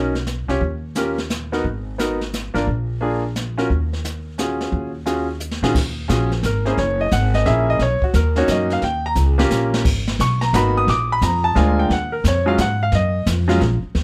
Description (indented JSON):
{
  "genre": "jazz, small-group swing and bop",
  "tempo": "175 BPM",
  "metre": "3/4",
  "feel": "swing 65% on 8ths",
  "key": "Eb minor",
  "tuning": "A4 = 439 Hz",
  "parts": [
    { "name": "clear baby grand piano", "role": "accompaniment", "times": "0.0-13.6 s", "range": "Eb3 to Eb6", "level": "-22 LUFS", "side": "equal", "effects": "none" },
    { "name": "upright bass", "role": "bass", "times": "0.0-14.0 s", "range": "Gb1 to Bb2", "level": "-23 LUFS", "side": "equal", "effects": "none" },
    { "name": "jazz brush drum kit", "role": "drums", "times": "0.2-14.0 s", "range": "brushed snare drum, crash cymbal, hi-hat, kick drum, snare drum", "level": "-27 LUFS", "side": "equal", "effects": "none" }
  ],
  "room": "light reverb",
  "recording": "close, detailed microphones",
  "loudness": "-20 LUFS",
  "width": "mono",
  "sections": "0.0-5.7 A section; 5.7-13.9 B section",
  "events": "drum fill 5.4-5.7, 9.2-9.9",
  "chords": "0.0 Bmaj7; 0.6 Eb7; 1.6 Abm7; 2.7 Bb7; 3.7 Ebm11; 6.8 Gb7; 7.8 Bmaj7; 8.8 Eb7; 9.9 Abm7; 10.9 Bb7; 11.9 Ebm11",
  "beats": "0.27 | 0.61 0.95 1.30 | 1.64 1.98 2.32 | 2.67 3.01 3.35 | 3.69 4.04 4.38 | 4.72 5.06 5.41 | 5.75 6.09 6.43 | 6.77 7.12 7.46 | 7.80 8.14 8.48 | 8.83 9.17 9.51 | 9.85 10.19 10.53 | 10.88 11.22 11.56 | 11.90 12.24 12.58 | 12.92 13.26 13.61 | 13.95"
}